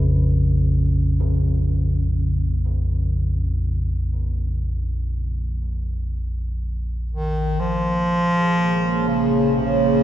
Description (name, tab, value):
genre	dark ambient drone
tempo	free time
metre	none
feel	none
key	Bb minor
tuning	A4 = 439 Hz
part	gamelan-type bossed gongs	arpeggios	0.0-5.6 s	Db3	-26 LUFS	equal	tape echo
part	deep rumbling drone	drone	0.0-10.0 s	Bb1 to F2	-22 LUFS	equal	built-in reverb, wide subtle chorus
part	clear bass clarinet	melody	7.1-10.0 s	Db3 to F3	-20 LUFS	equal	tape echo
part	deep dark ambient pad	sustained chords	8.4-10.0 s	Bb3 to Db5	-20 LUFS	right 2 dB	chorus, built-in reverb
room	wet lush hall reverb, RT60 2.5 s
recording	dreamy mix soaked in reverb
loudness	-19 LUFS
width	side -12 dB against mid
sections	0.0-7.6 A section; 7.6-10.0 B section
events	none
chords	0.0 Bbm; 7.6 Bbm7